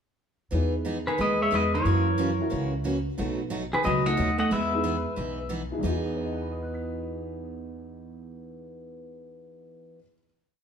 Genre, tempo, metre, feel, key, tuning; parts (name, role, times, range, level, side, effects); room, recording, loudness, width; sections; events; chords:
country, western swing; 181 BPM; 4/4; swing 63% on 8ths; E major; A4 = 440 Hz
dark upright piano; accompaniment; 0.5-10.2 s; E2 to B6; -34 LUFS; right 1 dB
picked steel-string acoustic guitar; accompaniment; 0.5-10.0 s; B2 to G#4; -34 LUFS; right 1 dB
upright bass; bass; 0.5-9.9 s; B1 to F#2; -30 LUFS; equal
pedal steel guitar; melody; 1.1-5.5 s; G#4 to F#5; -27 LUFS; left 3 dB
archtop guitar, miked and amplified; second line; 1.1-5.5 s; D#3 to A3; -29 LUFS; right 3 dB
moderate large studio reverb, RT60 1.2 s; band playing live in one room; -24 LUFS; side -7 dB against mid
0.5-5.8 A section; 5.8-8.5 final chord
0.5 Emaj7; 1.9 F#7; 3.2 B7; 4.5 Emaj7